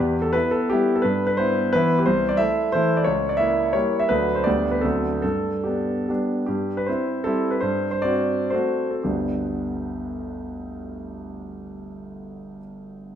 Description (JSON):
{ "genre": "classical, romantic triple-time dance for piano with dotted rhythms", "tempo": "105-192 BPM", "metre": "3/4", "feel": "rubato", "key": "G major", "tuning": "A4 = 440 Hz", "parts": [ { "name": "clear concert grand piano", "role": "solo", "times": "0.0-13.2 s", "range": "G1 to E5", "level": "-21 LUFS", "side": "equal", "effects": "none" } ], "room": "wet recital hall reverb, RT60 1.7 s", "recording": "none", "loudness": "-20 LUFS", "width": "side -9 dB against mid", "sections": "0.0-6.5 A section; 6.5-9.1 B section; 9.1-12.0 C section", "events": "slowing down 5.9-9.1", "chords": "0.0 Em; 1.0 Em/G; 2.1 Am/C; 3.1 C#dim7; 4.1 D; 4.5 G/D; 4.8 D7; 5.2 G; 6.5 C/G; 7.6 D7/G; 9.1 G" }